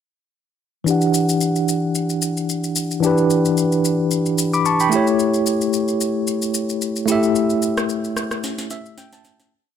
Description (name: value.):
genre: amapiano.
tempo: 111 BPM.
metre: 4/4.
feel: swing 55% on 16ths.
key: E dorian.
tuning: A4 = 440 Hz.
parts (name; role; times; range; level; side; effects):
bell-like tine electric piano; accompaniment; 0.8-9.5 s; E3 to D6; -17 LUFS; equal; auto-pan, low-pass filter.
electronic shaker, rim click and snare drum; drums; 0.9-9.5 s; none; -26 LUFS; left 2 dB; none.
room: light reverb.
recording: none.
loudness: -17 LUFS.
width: side -8 dB against mid.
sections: 0.9-9.5 breakdown.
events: filter sweep on tine electric piano 0.9-9.5; fade-out 7.4-9.5; drum fill 8.4-9.5; tine electric piano fill 8.4-9.5.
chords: 0.9 Em9; 4.9 A7.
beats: | 0.87 1.41 1.95 2.49 | 3.03 3.57 4.11 4.65 | 5.19 5.73 6.27 6.82 | 7.36 7.90 8.44 8.98.